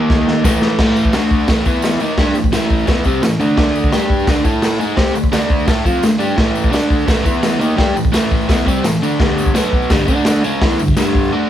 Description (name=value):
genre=garage rock duo or trio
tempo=171 BPM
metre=4/4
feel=straight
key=unclear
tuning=A4 = 441 Hz
part: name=overdriven electric guitar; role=riff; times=0.0-11.5 s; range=G2 to C5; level=-15 LUFS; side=equal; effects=none
part: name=crunchy breakbeat drum kit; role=drums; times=0.1-11.2 s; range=crash cymbal, hi-hat, kick drum, snare drum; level=-16 LUFS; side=equal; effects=none
part: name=tambourine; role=percussion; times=0.4-11.3 s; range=none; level=-36 LUFS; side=left 7 dB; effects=none
room=moderate large studio reverb, RT60 1.1 s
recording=band playing live in one room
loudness=-12 LUFS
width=side -11 dB against mid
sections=0.8-11.5 A section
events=drum fill 0.1-0.8; break 11.3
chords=0.4 A5; 1.1 D5; 1.5 A5; 1.7 E5; 2.0 A5; 3.6 D5; 3.9 G5; 4.3 D5; 4.4 A5; 4.8 D5; 6.4 A5; 6.7 D5; 7.1 A5; 7.3 E5; 7.6 A5; 9.2 G5; 9.6 B5; 9.9 G5; 10.1 D5; 10.4 G5